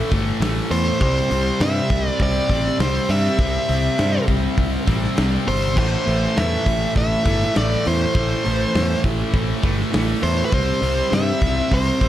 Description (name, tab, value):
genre	hard rock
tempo	101 BPM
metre	4/4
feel	straight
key	A minor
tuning	A4 = 443 Hz
part	crunchy overdriven guitar	riff	0.0-12.1 s	A2 to C4	-24 LUFS	equal	none
part	high-gain distorted guitar	riff	0.0-12.1 s	A2 to C4	-28 LUFS	left 1 dB	distortion
part	modern bright picked electric bass	bass	0.1-12.1 s	G1 to G2	-23 LUFS	equal	none
part	big rock drum kit	drums	0.1-12.1 s	crash cymbal, hi-hat, kick drum, snare drum	-24 LUFS	equal	none
part	biting lead guitar	melody	0.7-12.1 s	B4 to E5	-24 LUFS	equal	overdrive, tape echo
room	light reverb, small room ambience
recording	none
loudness	-17 LUFS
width	side -12 dB against mid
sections	0.0-12.1 A section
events	none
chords	0.0 Am; 1.0 C; 5.8 Am; 10.5 C